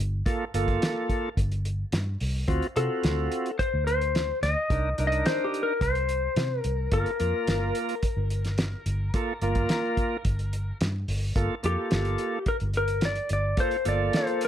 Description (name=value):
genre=straight-eighth soul blues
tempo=108 BPM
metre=4/4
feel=straight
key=G minor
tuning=A4 = 439 Hz
part: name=vintage muted fingered electric bass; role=bass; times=0.0-14.1 s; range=G1 to C3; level=-28 LUFS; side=equal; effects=none
part: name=bright tonewheel organ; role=accompaniment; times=0.3-14.5 s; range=Bb3 to Bb4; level=-29 LUFS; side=right 2 dB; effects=overdrive, slow rotary speaker, plate reverb
part: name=cloth-damped thuddy drum kit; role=drums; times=0.3-14.5 s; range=hi-hat, kick drum, snare drum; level=-29 LUFS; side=equal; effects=none
part: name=clean lap steel guitar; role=melody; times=2.8-14.5 s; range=G4 to Eb5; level=-28 LUFS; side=left 2 dB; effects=plate reverb
room=light reverb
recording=none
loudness=-24 LUFS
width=side -10 dB against mid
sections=0.0-11.4 A section; 11.4-14.5 A section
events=none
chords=0.0 Gm7; 2.5 D7#9; 4.7 Cm7; 6.9 Gm7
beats=| 0.26 0.82 1.37 1.93 | 2.48 3.04 3.59 4.15 | 4.70 5.26 5.81 6.37 | 6.92 7.48 8.03 8.59 | 9.14 9.70 10.25 10.81 | 11.36 11.91 12.47 13.03 | 13.58 14.13